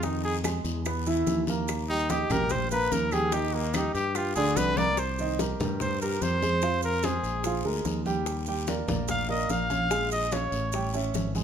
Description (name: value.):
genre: Afro-Cuban jazz.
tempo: 146 BPM.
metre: 4/4.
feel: straight.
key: Eb major, C minor from 5.0 s.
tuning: A4 = 440 Hz.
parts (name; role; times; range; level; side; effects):
clear trumpet; melody; 0.0-10.9 s; Bb3 to F5; -28 LUFS; equal; none.
warm baby grand piano; accompaniment; 0.0-11.4 s; D3 to Eb6; -31 LUFS; right 3 dB; none.
modern bright fingered electric bass; bass; 0.0-11.4 s; Ab1 to G2; -31 LUFS; left 1 dB; none.
bongos; percussion; 0.0-11.4 s; none; -38 LUFS; left 9 dB; none.
congas; percussion; 0.0-11.4 s; none; -34 LUFS; right 1 dB; none.
guiro; percussion; 0.0-11.4 s; none; -42 LUFS; left 7 dB; none.
maracas; percussion; 0.0-11.4 s; none; -42 LUFS; right 8 dB; none.
claves; percussion; 0.4-4.4 s; none; -41 LUFS; right 4 dB; none.
room: moderate large studio reverb, RT60 1.2 s.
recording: minimal, uncompressed stereo recording.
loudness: -25 LUFS.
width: side -8 dB against mid.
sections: 0.0-5.0 A section; 5.0-11.4 A section.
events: trumpet solo 0.0-11.4; drum fill 4.6-5.0.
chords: 0.0 Fm7; 0.9 E5; 1.7 Eb; 4.2 G5; 5.0 Cm7; 6.6 Fm; 7.4 Bb7; 8.3 Ebmaj9; 9.9 Bbm7; 10.7 A7.